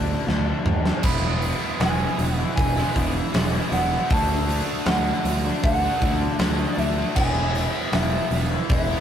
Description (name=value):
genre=quiet-loud alternative rock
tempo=78 BPM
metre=4/4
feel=straight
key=E mixolydian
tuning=A4 = 440 Hz
part: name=electric guitar through a small old amp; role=melody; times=0.0-9.0 s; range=D5 to B5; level=-28 LUFS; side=right 1 dB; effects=none
part: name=distorted electric guitar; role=riff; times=0.0-9.0 s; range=D3 to F#4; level=-30 LUFS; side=left 4 dB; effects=distortion
part: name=fuzz fingered electric bass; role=bass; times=0.0-8.9 s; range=E1 to D#2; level=-25 LUFS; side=equal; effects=overdrive
part: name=huge arena drum kit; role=drums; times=0.3-8.9 s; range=crash cymbal, hi-hat, kick drum, snare drum, toms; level=-24 LUFS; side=equal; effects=none
part: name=distorted electric guitar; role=riff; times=1.0-9.0 s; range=D3 to F#4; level=-30 LUFS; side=right 4 dB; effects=distortion
room=wet small room ambience, RT60 0.5 s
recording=rough rehearsal-room recording, warm saturation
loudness=-20 LUFS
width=side -9 dB against mid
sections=0.0-9.0 A section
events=drum fill 0.3-1.0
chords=0.0 D; 1.0 E; 4.1 D; 7.2 E